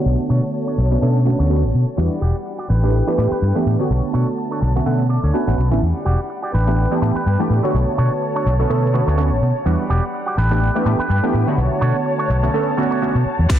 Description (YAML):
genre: filtered disco house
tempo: 125 BPM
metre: 4/4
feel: swing 56% on 16ths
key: B minor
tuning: A4 = 444 Hz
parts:
  - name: funky polysynth comp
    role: accompaniment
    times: 0.0-13.6 s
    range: D3 to F#5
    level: -20 LUFS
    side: right 2 dB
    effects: chorus, phaser, sidechain pumping, low-pass filter
  - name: clear studio string section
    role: sustained chords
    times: 0.0-13.6 s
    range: G3 to A5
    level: -27 LUFS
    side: left 2 dB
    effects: sidechain pumping, low-pass filter
  - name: fingered electric bass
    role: bass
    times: 0.1-13.6 s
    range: E1 to B2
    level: -17 LUFS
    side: equal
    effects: sidechain pumping, low-pass filter
  - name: electric guitar with an envelope filter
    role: riff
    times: 0.3-13.6 s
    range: D4 to A5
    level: -27 LUFS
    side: right 3 dB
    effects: sidechain pumping, low-pass filter
  - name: electronic kick drum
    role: drums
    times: 13.5-13.6 s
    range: none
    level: -14 LUFS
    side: equal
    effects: none
  - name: house drum kit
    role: drums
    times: 13.5-13.6 s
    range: crash cymbal, hi-hat, shaker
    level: -27 LUFS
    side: left 3 dB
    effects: sidechain pumping on hats, sidechain pumping on perc, sidechain pumping on cymbals
room: moderate echo chamber reverb, RT60 2.3 s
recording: dense, heavily limited modern master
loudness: -16 LUFS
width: side -11 dB against mid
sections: 0.0-13.5 A section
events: filter sweep 0.0-13.5; clean electric guitar fill 4.4-5.8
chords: 0.1 Bm9; 2.0 Em9; 2.7 A9sus4; 3.9 Bm9; 5.8 Em9; 6.5 A9sus4; 7.7 Bm9; 9.7 Em9; 10.4 A9sus4; 11.6 Bm9